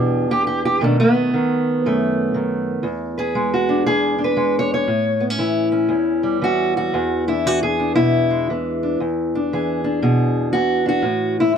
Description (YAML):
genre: acoustic country blues, solo or duo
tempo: 117 BPM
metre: 4/4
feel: swing 62% on 8ths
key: E mixolydian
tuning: A4 = 440 Hz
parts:
  - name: fingerpicked steel-string acoustic guitar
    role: solo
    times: 0.0-11.6 s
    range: E2 to C#5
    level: -17 LUFS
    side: equal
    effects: none
room: little or no reverb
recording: dry, close 1970s-style studio recording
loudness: -17 LUFS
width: side -7 dB against mid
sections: 0.0-2.8 A section; 2.8-11.6 B section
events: steel-string acoustic guitar solo 2.8-11.6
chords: 0.0 E5; 0.8 B7; 2.8 E7; 4.9 A7; 6.9 E7; 11.0 A5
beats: 0.28 | 0.79 1.30 1.81 2.32 | 2.84 3.35 3.86 4.37 | 4.88 5.40 5.91 6.42 | 6.93 7.45 7.96 8.47 | 8.98 9.50 10.01 10.52 | 11.04 11.55